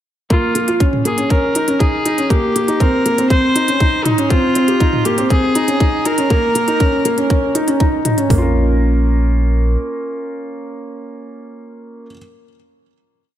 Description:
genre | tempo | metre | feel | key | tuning
piano and strings electronica | 120 BPM | 4/4 | straight | Bb dorian | A4 = 440 Hz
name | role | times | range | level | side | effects
clear viola | melody | 0.3-7.6 s | Eb4 to C5 | -18 LUFS | equal | low-pass filter, ping-pong delay
felt-muted upright piano | riff | 0.3-12.2 s | Bb3 to Bb4 | -17 LUFS | equal | ping-pong delay
warm sub bass | bass | 0.3-9.8 s | Eb1 to C2 | -17 LUFS | equal | sidechain pumping, high-pass filter
organic electronic drum kit | drums | 0.3-8.4 s | hi-hat, kick drum, toms | -16 LUFS | equal | none
organic electronic drum kit | drums | 0.3-8.3 s | hi-hat, toms | -23 LUFS | right 1 dB | none
room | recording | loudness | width
moderate echo chamber reverb, RT60 2.4 s | none | -13 LUFS | side -11 dB against mid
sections
0.3-8.3 build; 8.3-12.3 final chord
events
build-up 0.3-8.3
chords
0.3 Bbm; 2.3 Cm7; 4.3 Ab; 6.3 Eb5; 8.3 Bbm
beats
| 0.31 0.81 1.31 1.81 | 2.31 2.81 3.31 3.81 | 4.31 4.81 5.31 5.81 | 6.31 6.81 7.31 7.81 | 8.31 8.81 9.31 9.81 | 10.31 10.81 11.31 11.81

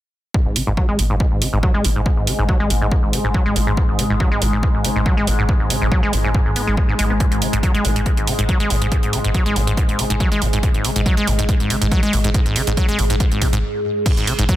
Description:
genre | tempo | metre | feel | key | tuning
driving peak-time techno | 140 BPM | 4/4 | straight | unclear | A4 = 441 Hz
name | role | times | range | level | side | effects
acid bass, saw | riff | 0.3-14.6 s | G#2 to B3 | -22 LUFS | equal | sidechain pumping, tape echo
overtone-sweeping drone | drone | 1.1-14.6 s | G#2 to G#3 | -25 LUFS | left 1 dB | chorus, built-in reverb, sidechain pumping
electronic kick drum | drums | 0.3-14.6 s | none | -19 LUFS | equal | none
warm sub bass | bass | 0.5-14.5 s | G#1 | -22 LUFS | equal | overdrive, sidechain pumping, low-pass filter
techno drum kit | drums | 0.6-14.6 s | crash cymbal, hi-hat | -24 LUFS | right 3 dB | sidechain pumping on hats, sidechain pumping on cymbals
room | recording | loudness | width
light reverb | dense, heavily limited modern master | -15 LUFS | side -14 dB against mid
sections
0.3-14.1 A section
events
filter sweep on acid bass 0.3-14.1; stop 13.6-14.1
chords
none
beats
| 0.35 0.77 1.20 1.63 | 2.06 2.49 2.92 3.35 | 3.77 4.20 4.63 5.06 | 5.49 5.92 6.35 6.77 | 7.20 7.63 8.06 8.49 | 8.92 9.35 9.77 10.20 | 10.63 11.06 11.49 11.92 | 12.35 12.77 13.20 13.63 | 14.06 14.49

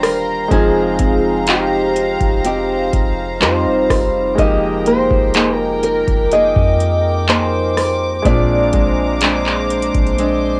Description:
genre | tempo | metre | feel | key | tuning
contemporary R&B | 62 BPM | 4/4 | straight | unclear | A4 = 440 Hz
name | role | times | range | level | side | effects
direct-recorded clean electric guitar | melody | 0.0-10.6 s | G4 to Eb5 | -20 LUFS | equal | lush chorus, cassette tape
clear concert grand piano | accompaniment | 0.0-10.6 s | D3 to G4 | -24 LUFS | equal | plate reverb
dark symphonic string section | sustained chords | 0.0-10.6 s | Bb4 to D6 | -26 LUFS | equal | sidechain pumping
nylon-string guitar | arpeggios | 0.0-10.6 s | Bb2 to Ab4 | -23 LUFS | equal | plate reverb
soft 808-style bass | bass | 0.0-10.6 s | Eb1 to F2 | -26 LUFS | equal | tube saturation
booming analog drum machine | drums | 0.0-10.4 s | handclaps, hi-hat, kick drum, rim click | -19 LUFS | equal | overdrive, cassette tape
room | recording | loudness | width
moderate booth ambience, RT60 0.2 s | home recording on cassette | -15 LUFS | mono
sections
0.0-10.6 A section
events
drum fill 10.2-10.6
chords
0.0 Ebmaj9; 0.5 Fm11; 8.3 Bb9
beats
| 0.51 1.48 2.45 3.42 | 4.38 5.35 6.32 7.29 | 8.25 9.22 10.19

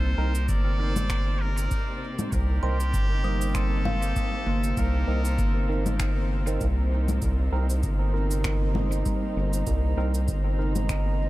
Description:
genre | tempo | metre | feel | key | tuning
ambient dub | 98 BPM | 4/4 | swing 56% on 16ths | C minor | A4 = 439 Hz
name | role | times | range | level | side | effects
trumpet with straight mute | melody | 0.0-6.0 s | G4 to D5 | -35 LUFS | equal | dub echo
dark studio string section | sustained chords | 0.0-11.3 s | C3 to C5 | -35 LUFS | left 1 dB | none
kalimba | arpeggios | 0.0-11.3 s | G3 to Eb6 | -36 LUFS | left 2 dB | dub echo
barky tine electric piano | stabs | 0.0-10.7 s | Bb3 to Bb4 | -35 LUFS | right 3 dB | phaser, dub echo
round analog bass | bass | 0.0-11.3 s | G1 to C2 | -25 LUFS | equal | none
electronic shaker, congas and finger snaps | drums | 0.3-11.0 s | none | -34 LUFS | left 1 dB | dub echo
electronic kick drum | drums | 0.5-11.0 s | none | -30 LUFS | equal | none
drifting glass-harmonics texture | texture | 7.6-11.3 s | Eb4 | -37 LUFS | right 5 dB | chorus, built-in reverb
room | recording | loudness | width
digital ambience | none | -23 LUFS | side -17 dB against mid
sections
0.0-11.3 A section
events
none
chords
0.0 Cm7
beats
0.49 1.10 1.71 | 2.32 2.94 3.55 4.16 | 4.77 5.38 6.00 6.61 | 7.22 7.83 8.45 9.06 | 9.67 10.28 10.89

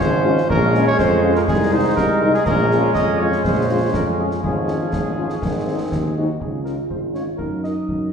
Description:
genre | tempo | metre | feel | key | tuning
military-style march for wind band | 122 BPM | 2/4 | straight | Db major | A4 = 440 Hz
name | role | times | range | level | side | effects
dark cornet | melody | 0.0-8.1 s | Gb4 to Eb5 | -24 LUFS | right 1 dB | none
brilliant trombone section | sustained chords | 0.0-6.2 s | Eb3 to Eb4 | -22 LUFS | equal | none
warm tuba | bass | 0.0-8.1 s | Ab1 to Gb2 | -21 LUFS | right 1 dB | none
concert snare drum, concert bass drum and clash cymbals | drums | 0.0-8.1 s | none | -26 LUFS | left 1 dB | none
dark French horn section | accompaniment | 0.3-7.7 s | Ab3 to F4 | -26 LUFS | left 3 dB | none
mellow euphonium | second line | 6.4-8.1 s | Eb4 to F4 | -26 LUFS | right 1 dB | none
room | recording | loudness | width
wet scoring stage reverb, RT60 1.5 s | heard from further back in the room, nothing above 10.5 kHz | -16 LUFS | side -6 dB against mid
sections
0.0-6.4 A section; 6.4-8.1 B section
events
none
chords
0.5 Bbm7; 1.5 Ab/C; 2.5 Bbm7; 4.4 Db/Ab; 5.4 Ab; 6.4 Db; 7.4 Ebm/Gb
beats
0.00 | 0.50 0.99 | 1.48 1.98 | 2.47 2.96 | 3.45 3.94 | 4.44 4.93 | 5.42 5.91 | 6.41 6.90 | 7.39 7.89

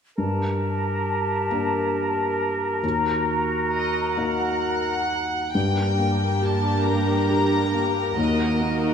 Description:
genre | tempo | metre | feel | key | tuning
cinematic | 45 BPM (dotted quarters) | 6/8 | rubato | G minor | A4 = 440 Hz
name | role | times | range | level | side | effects
clear clarinet | second line | 0.2-5.2 s | Gb4 to G4 | -30 LUFS | right 2 dB | none
large flute ensemble | second line | 0.2-5.2 s | A5 to Bb5 | -28 LUFS | left 1 dB | none
warm oboe | second line | 0.2-5.2 s | Bb4 | -28 LUFS | right 1 dB | none
felt-muted upright piano | accompaniment | 0.2-8.9 s | Eb2 to Bb4 | -26 LUFS | left 2 dB | none
warm chamber violin section | melody | 3.7-8.9 s | Eb5 to Bb5 | -27 LUFS | left 1 dB | none
dark chamber violin section | second line | 5.5-8.9 s | Gb4 to Bb4 | -28 LUFS | left 5 dB | none
warm symphonic cello section | bass | 5.5-8.9 s | Eb2 to G2 | -27 LUFS | right 2 dB | none
dark symphonic viola section | accompaniment | 5.6-8.9 s | Bb3 to Eb4 | -26 LUFS | right 4 dB | none
room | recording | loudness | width
wet concert hall reverb, RT60 2.2 s | minimal, uncompressed stereo recording | -21 LUFS | side -7 dB against mid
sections
0.2-5.5 A section; 5.5-8.9 B section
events
none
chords
0.2 Gmadd9; 2.8 Ebm; 5.5 Gm; 8.2 Ebm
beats
| 0.19 1.52 | 2.83 4.17 | 5.54 6.87 | 8.18

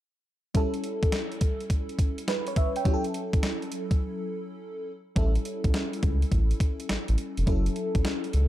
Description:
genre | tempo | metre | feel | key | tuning
R&B, new jack swing | 104 BPM | 4/4 | swing 67% on 16ths | unclear | A4 = 440 Hz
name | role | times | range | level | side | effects
FM electric piano with soft pad layer | accompaniment | 0.5-8.5 s | F#3 to G5 | -31 LUFS | equal | chorus, phaser
crisp 8-bit digital drum machine | drums | 0.5-8.5 s | hi-hat, kick drum, snare drum | -26 LUFS | equal | overdrive
round analog bass | bass | 5.2-8.5 s | F1 to C#2 | -24 LUFS | equal | none
room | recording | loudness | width
little or no reverb | dark, warm production | -25 LUFS | side -14 dB against mid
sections
0.5-5.2 A section; 5.2-8.5 B section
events
break 4.0-5.2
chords
0.5 A7; 2.9 F#m7; 4.9 N.C.; 5.2 A7; 7.5 F#m7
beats
| 0.55 1.12 1.70 2.28 | 2.85 3.43 4.01 4.58 | 5.16 5.74 6.32 6.89 | 7.47 8.05

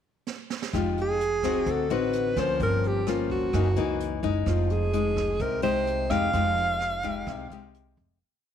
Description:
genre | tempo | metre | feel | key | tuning
bossa nova | 128 BPM | 4/4 | straight | F minor | A4 = 440 Hz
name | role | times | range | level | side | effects
jazz brush drum kit | drums | 0.3-8.1 s | hi-hat, kick drum, rim click, snare drum | -36 LUFS | right 6 dB | none
nylon-string guitar | accompaniment | 0.7-8.2 s | Gb2 to G4 | -28 LUFS | left 10 dB | none
upright bass | bass | 0.7-8.2 s | F1 to D2 | -30 LUFS | right 2 dB | none
breathy alto saxophone | melody | 0.8-7.7 s | F4 to F5 | -27 LUFS | right 2 dB | none
room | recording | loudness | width
light reverb, studio ambience | 1960s-style stereo with parts hard left and right | -24 LUFS | side -9 dB against mid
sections
0.0-0.7 pickup bar; 0.7-8.2 A section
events
drum fill 0.3-0.7; fade-out 6.3-8.2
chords
0.0 N.C.; 0.7 Fm9; 1.7 D7b9; 2.6 Gm7b5; 3.5 Gb13; 4.5 Fm9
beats
0.27 | 0.73 1.20 1.66 2.13 | 2.60 3.06 3.53 4.00 | 4.46 4.93 5.40 5.87 | 6.33 6.80 7.27 7.74

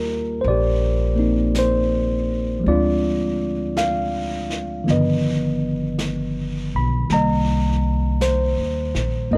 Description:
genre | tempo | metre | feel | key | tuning
jazz ballad | 54 BPM | 4/4 | swing 67% on 8ths | unclear | A4 = 436 Hz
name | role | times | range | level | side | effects
tine electric piano | accompaniment | 0.0-9.4 s | D3 to B5 | -23 LUFS | equal | none
upright bass | bass | 0.0-9.4 s | G1 to Eb2 | -26 LUFS | equal | none
jazz brush drum kit | drums | 0.4-9.4 s | brushed snare drum, hi-hat, snare drum | -36 LUFS | equal | none
room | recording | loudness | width
small room ambience | dry, close 1970s-style studio recording | -21 LUFS | mono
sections
0.0-9.4 A section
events
none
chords
0.0 Ebmaj9; 2.7 Dm7b5; 4.9 G7b13; 7.1 Cm7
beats
0.43 1.54 | 2.66 3.77 4.88 5.99 | 7.10 8.21 9.32

